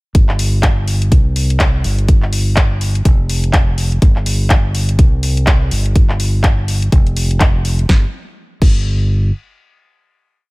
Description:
piano house; 124 BPM; 4/4; swing 59% on 16ths; A4 = 440 Hz
fingered electric bass; bass; 0.1-9.3 s; F1 to C2; -16 LUFS; equal; tube saturation, sidechain pumping
electronic kick drum; drums; 0.1-8.8 s; -11 LUFS; equal; small room ambience
house drum kit; drums; 0.1-8.8 s; crash cymbal, handclaps, hi-hat, snare drum; -20 LUFS; left 1 dB; small room ambience
little or no reverb; -11 LUFS; side -24 dB against mid
0.1-7.9 drop; 7.9-10.5 final note
drop 0.1-7.9

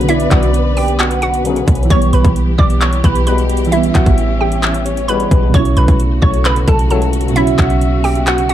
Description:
hip hop, trap; 132 BPM; 4/4; half-time; A4 = 442 Hz
hollow square pluck; melody; 0.0-8.5 s; E4 to D6; -18 LUFS; right 1 dB; chorus
soft electric-piano-like synth keys; accompaniment; 0.0-8.5 s; B2 to D5; -19 LUFS; right 6 dB; chorus
warm studio string section; sustained chords; 0.0-8.5 s; B2 to B4; -23 LUFS; left 2 dB
mellow brass ensemble; stabs; 0.0-7.3 s; C#2 to G3; -22 LUFS; left 8 dB; ping-pong delay
clean 808-style bass; bass; 0.0-8.5 s; A1 to B1; -15 LUFS; equal
trap drum kit; drums; 0.0-8.5 s; handclaps, hi-hat, kick drum; -15 LUFS; equal; overdrive
breathy flute-like synth lead; second line; 0.1-1.0, 3.7-8.2 s; B4 to E5; -24 LUFS; left 4 dB; chorus, ping-pong delay
little or no reverb; dark, warm production; -11 LUFS; side -11 dB against mid
0.0-8.5 A section
0.0 Bmadd9; 1.9 Em/B; 5.5 A6/B

